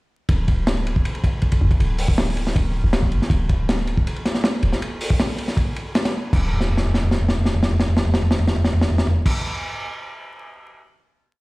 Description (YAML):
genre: drum and bass, jungle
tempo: 159 BPM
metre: 4/4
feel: straight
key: unclear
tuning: A4 = 438 Hz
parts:
  - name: warm 808-style bass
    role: bass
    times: 0.3-9.3 s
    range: D1 to G1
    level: -22 LUFS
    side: equal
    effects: none
  - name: crunchy breakbeat drum kit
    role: drums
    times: 0.3-10.8 s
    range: crash cymbal, hi-hat, kick drum, ride cymbal, snare drum, toms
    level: -19 LUFS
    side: equal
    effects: none
room: light reverb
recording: played on a big sound system in a bare room, large studio reverb, vinyl crackle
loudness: -18 LUFS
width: side -23 dB against mid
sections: 0.3-6.3 drop; 6.3-9.3 final note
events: drop 0.3-6.3; drum fill 6.5-9.3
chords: none